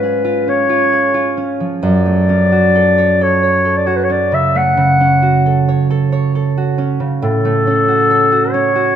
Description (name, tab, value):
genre	classical, romantic duo for clarinet and harp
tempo	45 BPM (dotted quarters)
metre	12/8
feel	rubato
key	F# minor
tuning	A4 = 440 Hz
part	mellow clarinet	melody	0.0-9.0 s	A4 to F#5	-13 LUFS	left 2 dB	none
part	concert harp	accompaniment	0.0-9.0 s	F#2 to C#5	-14 LUFS	right 3 dB	none
room	moderate recital hall reverb, RT60 1.6 s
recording	none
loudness	-11 LUFS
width	side -9 dB against mid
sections	0.0-9.0 A section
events	none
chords	0.0 C#7/G#; 1.8 F#m; 7.2 F#m/A